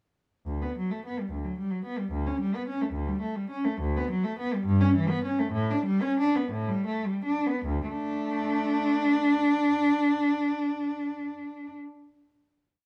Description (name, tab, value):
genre	classical, baroque-style suite movement for unaccompanied cello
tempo	48-75 BPM (dotted quarters)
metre	6/8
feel	rubato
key	D major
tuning	A4 = 438 Hz
part	warm cello	solo	0.5-11.7 s	D2 to D4	-28 LUFS	equal	none
room	light reverb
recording	none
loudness	-28 LUFS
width	mono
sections	0.5-7.7 A section; 7.7-12.1 final chord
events	slowing down 3.0-7.7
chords	0.5 D; 2.1 G5/D; 3.8 D; 4.7 Em/G; 5.5 A7(no3); 7.7 D5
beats	| 0.46 1.32 | 2.13 2.95 | 3.82 4.66 | 5.54 6.53 | 7.67 8.79 | 9.90 11.01